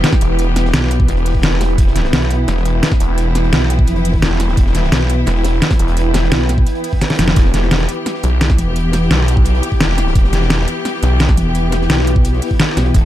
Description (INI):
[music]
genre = dark technical drum and bass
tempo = 172 BPM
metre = 4/4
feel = straight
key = E minor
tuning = A4 = 441 Hz
[part]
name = bright studio string section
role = sustained chords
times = 0.0-13.1 s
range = E3 to A4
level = -24 LUFS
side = left 3 dB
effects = sidechain pumping
[part]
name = snarling distorted saw bass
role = bass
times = 0.0-13.1 s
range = E1 to B1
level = -15 LUFS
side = equal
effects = distortion, sidechain pumping
[part]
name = crunchy breakbeat drum kit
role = drums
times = 0.0-13.0 s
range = hi-hat, snare drum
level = -29 LUFS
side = equal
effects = none
[part]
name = dubstep drum kit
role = drums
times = 0.0-13.0 s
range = hi-hat, snare drum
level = -17 LUFS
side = equal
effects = none
[part]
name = granular cloud pad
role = texture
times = 0.0-13.1 s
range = E4 to G5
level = -23 LUFS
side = right 1 dB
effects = built-in reverb, sidechain pumping
[part]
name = electronic kick drum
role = drums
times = 0.1-13.0 s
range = none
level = -14 LUFS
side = equal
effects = none
[part]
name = metallic wobble bass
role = bass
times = 0.7-9.1, 11.4-12.9 s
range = E1 to B1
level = -15 LUFS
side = equal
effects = chorus
[sound]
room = small room ambience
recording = dark, warm production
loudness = -12 LUFS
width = side -13 dB against mid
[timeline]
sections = 0.0-7.4 A section; 7.4-13.1 A section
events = drop 0.0-7.4, 7.4-13.1; drum fill 7.0-7.4; band accent 7.3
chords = 0.0 Em